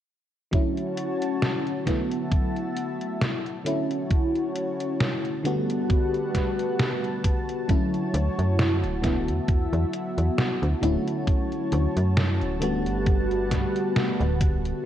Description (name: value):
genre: vaporwave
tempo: 67 BPM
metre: 4/4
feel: swing 55% on 16ths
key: D major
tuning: A4 = 440 Hz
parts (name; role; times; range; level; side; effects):
- FM electric piano with soft pad layer; accompaniment; 0.5-14.9 s; D3 to F#4; -27 LUFS; left 1 dB; phaser, wide subtle chorus, tape echo
- lush unison pad; sustained chords; 0.5-14.8 s; G3 to A5; -31 LUFS; equal; chorus
- detuned 8-bit digital drum machine; drums; 0.5-14.8 s; hi-hat, snare drum; -28 LUFS; equal; gated reverb
- electronic kick drum; drums; 0.5-14.6 s; none; -24 LUFS; equal; none
- slap-like FM bass; bass; 8.1-14.7 s; D1 to G2; -25 LUFS; equal; none
room: moderate concert hall reverb, RT60 2.2 s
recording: cassette tape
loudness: -23 LUFS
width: side -11 dB against mid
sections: 0.5-14.9 A section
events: none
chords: 0.5 Dmaj7; 1.9 E9sus4; 3.7 Dmaj7; 5.5 Gmaj9; 7.7 Dmaj7; 9.0 E9sus4; 10.8 Dmaj7; 12.6 Gmaj9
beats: | 0.53 1.42 2.32 3.21 | 4.11 5.01 5.90 6.80 | 7.69 8.59 9.48 10.38 | 11.27 12.17 13.06 13.96